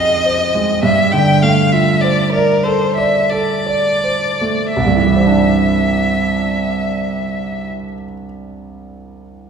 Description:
classical, impressionist duo for violin and grand piano; 40-52 BPM; 3/4; rubato; C major; A4 = 439 Hz
warm violin; melody; 0.0-7.7 s; Bb4 to G5; -17 LUFS; left 2 dB
clear concert grand piano; accompaniment; 0.0-9.5 s; C2 to Eb5; -15 LUFS; right 2 dB
wet scoring stage reverb, RT60 1.8 s; heard from further back in the room; -12 LUFS; side -6 dB against mid
0.0-4.7 A section; 4.7-8.7 B section
slowing down 0.0-4.7
0.0 Fm7; 0.8 G9sus4; 4.7 Cadd9

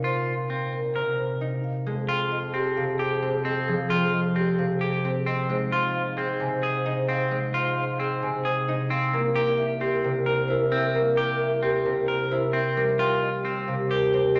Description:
classical, minimalist pattern music; 132 BPM; 4/4; straight; F minor; A4 = 440 Hz
marimba with medium mallets; melody; 0.0-14.4 s; G4 to C6; -31 LUFS; equal
concert harp; accompaniment; 0.0-14.4 s; C3 to E4; -31 LUFS; equal
clean electric guitar; arpeggios; 0.0-14.4 s; C4 to Bb4; -30 LUFS; equal
mellow bassoon; bass; 0.0-14.4 s; C2 to Bb2; -38 LUFS; equal
mellow hollow alto flute; second line; 1.9-14.4 s; G4 to C5; -32 LUFS; equal
wet recital hall reverb, RT60 1.6 s; nothing above 7.7 kHz; -25 LUFS; mono
0.0-1.9 A section; 1.9-14.4 B section
0.0 Bbsus4; 1.9 Fm7; 5.5 Ab; 9.1 C7; 12.8 Ebadd9

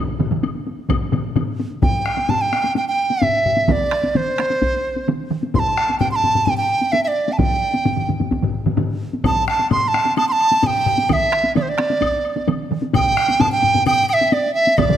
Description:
japanese traditional, taiko drum ensemble; 130 BPM; 4/4; straight; D suspended pentatonic; A4 = 440 Hz
taiko ensemble; percussion; 0.1-14.9 s; -24 LUFS; left 2 dB
solo taiko drums; percussion; 0.2-15.0 s; -23 LUFS; left 5 dB
taiko ensemble; percussion; 0.2-15.0 s; -24 LUFS; right 4 dB
woodblock; percussion; 0.4-1.5, 9.2-14.9 s; -32 LUFS; left 7 dB
taiko ensemble; percussion; 0.9-14.9 s; -24 LUFS; equal
bright large dizi; melody; 1.8-15.0 s; C5 to C6; -17 LUFS; right 2 dB
moderate scoring stage reverb, RT60 1.9 s; -16 LUFS; side -10 dB against mid
0.0-1.8 A section; 1.8-15.0 B section

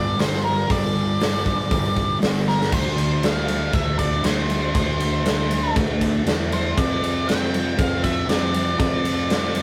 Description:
rock, shoegaze and dream pop; 118 BPM; 4/4; straight; D minor; A4 = 445 Hz
octave-fuzz lead guitar; melody; 0.0-9.6 s; Bb4 to G5; -28 LUFS; equal; distortion
fuzz guitar; riff; 0.0-9.6 s; F2 to D4; -30 LUFS; equal; distortion
fuzz fingered electric bass; bass; 0.0-9.6 s; G1 to F2; -27 LUFS; equal; overdrive
big rock drum kit; drums; 0.2-9.6 s; crash cymbal, hi-hat, kick drum, ride cymbal, snare drum; -25 LUFS; equal
light reverb; rough rehearsal-room recording, warm saturation; -21 LUFS; mono
0.0-2.7 A section; 2.7-9.6 B section
drum fill 2.5
0.0 G5; 2.7 D7(no3); 6.8 F5

